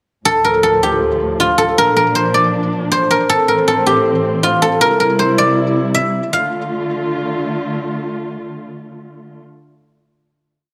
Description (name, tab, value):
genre	hip hop, trap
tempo	158 BPM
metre	4/4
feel	half-time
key	D minor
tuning	A4 = 442 Hz
part	guzheng	melody	0.3-8.0 s	F4 to F5	-16 LUFS	equal	none
part	dark chamber string section	sustained chords	0.3-9.4 s	D2 to F4	-22 LUFS	equal	none
room	light reverb, small room ambience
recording	dry, gritty hardware recording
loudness	-15 LUFS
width	mono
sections	0.3-6.3 breakdown; 6.3-9.4 final chord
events	none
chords	0.3 Dm; 1.8 Bb; 3.3 Am; 4.8 C; 6.3 Dm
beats	| 0.25 0.63 1.01 1.39 | 1.77 2.15 2.53 2.91 | 3.29 3.67 4.05 4.43 | 4.81 5.19 5.57 5.95 | 6.33 6.71 7.09 7.47 | 7.85 8.23 8.61 8.99